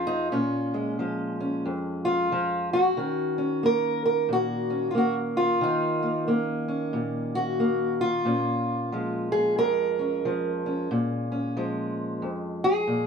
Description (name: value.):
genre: acoustic country blues, solo or duo.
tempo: 91 BPM.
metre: 4/4.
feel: swing 60% on 8ths.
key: Bb minor.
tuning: A4 = 444 Hz.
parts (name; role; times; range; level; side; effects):
fingerpicked steel-string acoustic guitar; solo; 0.0-13.1 s; F2 to Bb4; -24 LUFS; equal; none.
room: moderate studio reverb, RT60 0.8 s.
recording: none.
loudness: -24 LUFS.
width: side -6 dB against mid.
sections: 0.0-13.1 A section.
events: none.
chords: 0.0 Bbm7; 3.0 Ebm7; 8.3 Bbm7.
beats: | 0.32 0.99 1.65 2.31 | 2.97 3.63 4.30 4.96 | 5.62 6.28 6.94 7.60 | 8.26 8.92 9.58 10.24 | 10.90 11.56 12.22 12.88.